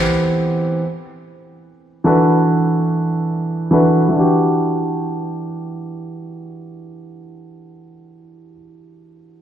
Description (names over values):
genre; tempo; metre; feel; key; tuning
R&B; 72 BPM; 4/4; swing 54% on 16ths; E minor; A4 = 440 Hz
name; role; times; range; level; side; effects
dark grand piano; accompaniment; 0.0-9.4 s; E3 to B4; -16 LUFS; equal; low-pass filter
room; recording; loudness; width
moderate lush hall reverb, RT60 2.5 s; played on a big sound system in a bare room, large studio reverb; -15 LUFS; side -10 dB against mid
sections
0.0-4.1 A section; 4.1-7.5 B section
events
filter sweep on grand piano 0.0-4.1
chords
0.0 Am9/E; 0.8 E9sus4; 4.1 Em9